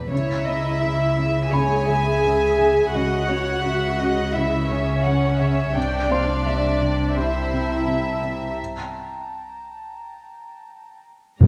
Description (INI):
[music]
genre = cinematic, suspense film score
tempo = 85 BPM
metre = 4/4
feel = straight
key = unclear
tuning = A4 = 440 Hz
[part]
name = warm studio violin section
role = second line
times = 0.0-11.5 s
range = B4 to G5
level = -31 LUFS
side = equal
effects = none
[part]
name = dark studio double bass section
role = bass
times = 0.0-11.5 s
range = C2 to C#2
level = -30 LUFS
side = equal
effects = none
[part]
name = warm studio cello section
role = bass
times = 0.0-11.5 s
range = C3 to C#3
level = -29 LUFS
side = equal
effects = none
[part]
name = felt-muted upright piano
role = texture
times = 0.0-8.6 s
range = C5 to C6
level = -36 LUFS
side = equal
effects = none
[part]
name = warm studio violin section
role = melody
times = 0.1-11.5 s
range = C#5 to Bb5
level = -29 LUFS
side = equal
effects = none
[part]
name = dark studio viola section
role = accompaniment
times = 0.1-11.5 s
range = G3 to G#4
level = -26 LUFS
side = equal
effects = none
[part]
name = warm studio cello section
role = riff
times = 0.1-11.5 s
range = G2 to C#4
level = -32 LUFS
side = equal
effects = none
[part]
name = dark chamber violin section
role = texture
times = 5.8-11.5 s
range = G5 to D6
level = -38 LUFS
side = equal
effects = none
[part]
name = timpani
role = percussion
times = 11.4-11.5 s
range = G2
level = -11 LUFS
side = equal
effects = none
[sound]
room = moderate scoring stage reverb, RT60 1.5 s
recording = none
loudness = -21 LUFS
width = mono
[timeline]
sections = 0.0-11.4 A section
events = break 8.6-11.4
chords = 0.1 C#m; 5.8 C; 8.6 Gmadd9